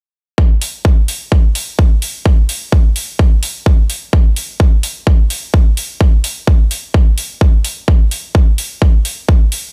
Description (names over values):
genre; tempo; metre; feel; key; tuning
EDM; 128 BPM; 4/4; straight; none; none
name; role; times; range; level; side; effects
electronic kick drum; drums; 0.4-9.4 s; none; -12 LUFS; equal; studio reverb
electronic hi-hat; drums; 0.6-9.6 s; none; -24 LUFS; equal; studio reverb
room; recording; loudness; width
little or no reverb; none; -14 LUFS; mono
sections
0.4-9.7 A section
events
none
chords
none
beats
| 0.38 0.85 1.32 1.79 | 2.26 2.72 3.19 3.66 | 4.13 4.60 5.07 5.54 | 6.01 6.47 6.94 7.41 | 7.88 8.35 8.82 9.29